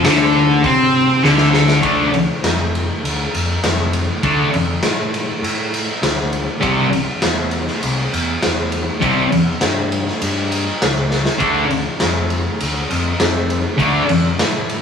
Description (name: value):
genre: garage rock duo or trio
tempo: 100 BPM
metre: 4/4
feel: straight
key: D minor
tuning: A4 = 439 Hz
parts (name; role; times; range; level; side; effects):
- thick fuzz guitar; riff; 0.0-14.0 s; C3 to D4; -14 LUFS; left 1 dB; distortion
- raw garage drum kit; drums; 0.0-14.8 s; hi-hat, kick drum, ride cymbal, snare drum; -19 LUFS; left 1 dB; none
- growling picked electric bass; bass; 0.1-14.8 s; C2 to C3; -22 LUFS; left 1 dB; overdrive
room: moderate stone room reverb, RT60 1.5 s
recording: rough rehearsal-room recording, tube saturation, cassette tape, studio ambience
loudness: -14 LUFS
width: side -7 dB against mid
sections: 0.0-1.8 A section; 1.8-14.8 B section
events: drum fill 1.2-1.8, 11.1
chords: 0.0 N.C.; 1.8 Dm; 6.6 C; 11.4 Dm